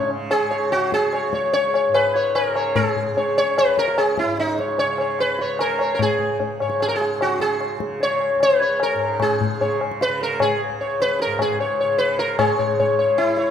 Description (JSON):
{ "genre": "indian classical, Hindustani", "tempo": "149 BPM", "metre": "4/4", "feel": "straight", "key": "unclear", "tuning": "A4 = 440 Hz", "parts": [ { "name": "sitar", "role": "melody", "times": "0.0-13.5 s", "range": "D#4 to C#5", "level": "-19 LUFS", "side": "equal", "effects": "none" }, { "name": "tanpura", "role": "drone", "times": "0.0-13.5 s", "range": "C#2 to C#3", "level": "-31 LUFS", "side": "right 4 dB", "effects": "none" }, { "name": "tabla", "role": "percussion", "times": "0.1-13.5 s", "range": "none", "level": "-25 LUFS", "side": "left 4 dB", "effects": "none" } ], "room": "moderate recital hall reverb, RT60 1.7 s", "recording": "minimal, uncompressed stereo recording", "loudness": "-18 LUFS", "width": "side -8 dB against mid", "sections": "0.0-12.4 A section; 12.4-13.5 B section", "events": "speeding up 0.0-13.5", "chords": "none" }